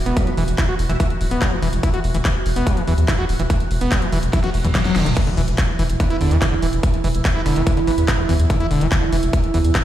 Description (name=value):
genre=psychedelic trance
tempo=144 BPM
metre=4/4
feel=straight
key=unclear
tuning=A4 = 439 Hz
part: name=evolving wavetable pad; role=sustained chords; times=0.0-9.8 s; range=E3 to F#4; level=-26 LUFS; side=right 5 dB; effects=chorus, built-in reverb, sidechain pumping
part: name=overdriven acid bass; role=riff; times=0.1-9.8 s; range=D3 to F#4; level=-24 LUFS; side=moving between left 5 dB and right 3 dB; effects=distortion, auto-pan, sidechain pumping, ping-pong delay
part: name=round analog bass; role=bass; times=0.1-9.7 s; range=D1 to E2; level=-19 LUFS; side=equal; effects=none
part: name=big-room dance drum kit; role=drums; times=0.1-9.8 s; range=crash cymbal, handclaps, hi-hat, snare drum, toms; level=-26 LUFS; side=left 1 dB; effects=overdrive
part: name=metallic wobble bass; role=second line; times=0.2-1.1, 6.0-8.0 s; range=B3 to E4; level=-34 LUFS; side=equal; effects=distortion, wide subtle chorus, sidechain pumping, high-pass filter, dub echo
part: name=electronic kick drum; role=drums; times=0.2-9.8 s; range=none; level=-20 LUFS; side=equal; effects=overdrive
part: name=reverse cymbal, sub drop and zap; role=sound effects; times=4.5-8.3 s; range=none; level=-31 LUFS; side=equal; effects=none
room=light reverb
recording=played on a big sound system in a bare room, large studio reverb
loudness=-16 LUFS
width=side -12 dB against mid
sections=0.0-5.2 A section; 5.2-9.8 B section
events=drum fill 4.3-5.2; reverse cymbal 4.5-5.2; drop 5.2-9.8; impact 5.2-6.8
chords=0.0 E5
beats=| 0.17 0.58 1.00 1.42 | 1.83 2.25 2.67 3.08 | 3.50 3.92 4.33 4.75 | 5.17 5.58 6.00 6.42 | 6.83 7.25 7.67 8.08 | 8.50 8.92 9.33 9.75